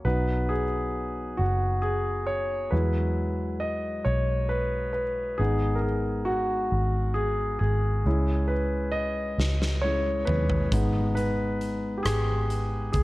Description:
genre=six-eight pop ballad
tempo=45 BPM (dotted quarters)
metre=6/8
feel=straight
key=unclear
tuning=A4 = 440 Hz
part: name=warm concert grand piano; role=accompaniment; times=0.0-13.0 s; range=F#3 to D#5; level=-27 LUFS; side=equal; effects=none
part: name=vintage muted fingered electric bass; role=bass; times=0.0-13.0 s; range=F#1 to E2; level=-27 LUFS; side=equal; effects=none
part: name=huge arena drum kit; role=drums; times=9.4-13.0 s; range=hi-hat, kick drum, rim click, snare drum, toms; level=-31 LUFS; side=equal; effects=none
room=light reverb, small room ambience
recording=worn, warbling old tape, cassette tape, warbly pitch drift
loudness=-24 LUFS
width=side -18 dB against mid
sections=0.0-5.4 A section; 5.4-13.0 B section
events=grand piano solo 0.0-5.4, 5.4-13.0; drum fill 9.4-10.7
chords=0.1 B; 2.7 Eadd9; 5.4 G#m; 8.1 C#m; 10.7 G#m

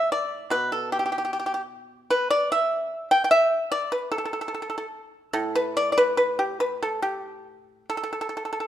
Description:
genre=chinese traditional, Chinese solo plucked strings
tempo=74 BPM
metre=4/4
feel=rubato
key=unclear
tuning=A4 = 438 Hz
part: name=pipa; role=solo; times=0.0-8.7 s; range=A2 to G5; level=-22 LUFS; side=equal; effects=none
room=light reverb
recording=minimal, uncompressed stereo recording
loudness=-22 LUFS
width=side -11 dB against mid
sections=0.0-8.7 A section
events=none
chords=none

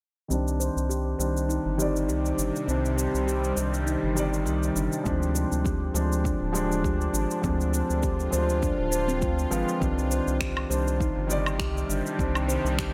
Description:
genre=organic downtempo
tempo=101 BPM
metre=4/4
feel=swing 55% on 16ths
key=C minor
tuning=A4 = 440 Hz
part: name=felt-muted upright piano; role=accompaniment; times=0.3-12.9 s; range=Eb3 to D5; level=-32 LUFS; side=equal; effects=sidechain pumping, low-pass filter, delay
part: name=bowed-like drone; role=sustained chords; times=1.6-12.9 s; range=C3 to F4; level=-37 LUFS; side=equal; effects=built-in reverb, phaser, sidechain pumping
part: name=handpan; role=arpeggios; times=0.3-12.9 s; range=C4 to C5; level=-33 LUFS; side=equal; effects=low-pass filter, delay
part: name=round analog bass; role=bass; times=0.3-12.9 s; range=D1 to D2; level=-31 LUFS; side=equal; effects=sidechain pumping
part: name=electronic shaker, finger snaps and woodblock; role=drums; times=0.3-12.9 s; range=none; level=-36 LUFS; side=equal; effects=none
part: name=electronic kick drum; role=drums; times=5.1-12.9 s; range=none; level=-33 LUFS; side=equal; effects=none
room=moderate lush hall reverb, RT60 2.0 s, digital ambience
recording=none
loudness=-26 LUFS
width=mono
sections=0.3-9.8 A section; 9.8-12.9 B section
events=filter sweep on analog synth bass 0.3-9.8; filter sweep on handpan 0.3-9.8; filter sweep on felt piano 0.3-9.8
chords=0.3 Cmadd9; 5.1 Dm7b5; 9.8 Cmadd9

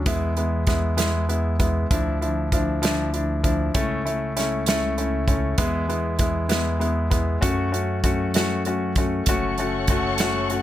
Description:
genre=six-eight pop ballad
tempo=65 BPM (dotted quarters)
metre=6/8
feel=straight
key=unclear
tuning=A4 = 439 Hz
part: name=chorused synth bass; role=bass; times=0.0-10.6 s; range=F#1 to F#2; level=-26 LUFS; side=equal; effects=none
part: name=clear concert grand piano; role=accompaniment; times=0.1-10.6 s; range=F3 to F#4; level=-24 LUFS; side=left 2 dB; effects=none
part: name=natural country drum kit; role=drums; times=0.1-10.6 s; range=hi-hat, kick drum, snare drum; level=-24 LUFS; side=right 1 dB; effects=none
part: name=dark studio string section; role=sustained chords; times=9.3-10.6 s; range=A4 to C#6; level=-28 LUFS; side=left 3 dB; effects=none
room=little or no reverb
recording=none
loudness=-20 LUFS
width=side -13 dB against mid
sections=0.0-10.6 A section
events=none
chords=0.1 E; 1.9 Dmadd9; 3.7 A/C#; 5.6 E; 7.4 F#m

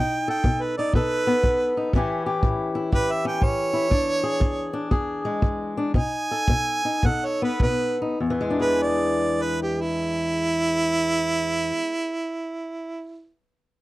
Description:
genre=acoustic country blues, solo or duo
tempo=100-121 BPM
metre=4/4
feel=swing 65% on 8ths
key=E mixolydian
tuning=A4 = 440 Hz
part: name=clear harmonica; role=melody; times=0.0-13.3 s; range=E4 to G#5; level=-24 LUFS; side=right 2 dB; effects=none
part: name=fingerpicked swing-style acoustic guitar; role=accompaniment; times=0.0-12.1 s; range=E2 to A4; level=-25 LUFS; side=left 2 dB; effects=none
part: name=kick drum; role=drums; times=0.4-7.8 s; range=none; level=-22 LUFS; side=equal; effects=none
room=little or no reverb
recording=dry, close 1970s-style studio recording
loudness=-21 LUFS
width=side -17 dB against mid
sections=0.0-8.2 A section; 8.2-13.0 B section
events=slowing down 3.9-8.2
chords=0.0 B7; 1.9 A7; 3.9 E7; 5.9 B7; 8.2 E7

